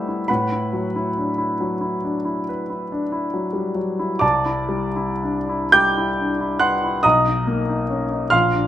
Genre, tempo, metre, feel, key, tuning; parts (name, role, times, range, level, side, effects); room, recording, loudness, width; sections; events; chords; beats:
classical, impressionist solo piano; 38-48 BPM (dotted quarters); 9/8; rubato; A4 = 441 Hz
clear grand piano; solo; 0.0-8.7 s; Bb1 to G6; -18 LUFS; equal
light reverb; close, detailed microphones; -18 LUFS; side -12 dB against mid
0.0-8.7 A section
0.3 E9sus4/A; 4.2 Cmaj9; 7.0 Bmaj9
| 0.28 1.60 2.90 | 4.22 5.72 7.04 | 8.32